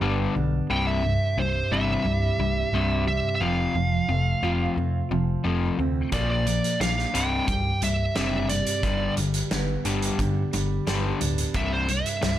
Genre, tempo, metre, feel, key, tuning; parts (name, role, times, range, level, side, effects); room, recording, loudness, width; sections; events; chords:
quiet-loud alternative rock; 88 BPM; 4/4; straight; C major; A4 = 440 Hz
fingerpicked steel-string acoustic guitar; arpeggios; 0.0-12.4 s; C2 to G4; -31 LUFS; right 7 dB
overdriven electric guitar; riff; 0.0-12.4 s; C2 to Bb3; -27 LUFS; left 4 dB
overdriven picked electric bass; bass; 0.0-12.4 s; C1 to G2; -28 LUFS; equal
smooth overdriven lead guitar; melody; 0.7-12.4 s; C5 to G5; -27 LUFS; right 2 dB
loose indie drum kit; drums; 6.1-12.4 s; hi-hat, kick drum, snare drum; -30 LUFS; right 1 dB
light reverb; -22 LUFS; side -12 dB against mid
0.0-12.4 A section
0.0 G; 0.7 C; 3.4 F; 6.1 Bb; 7.1 C5; 8.8 G; 11.6 C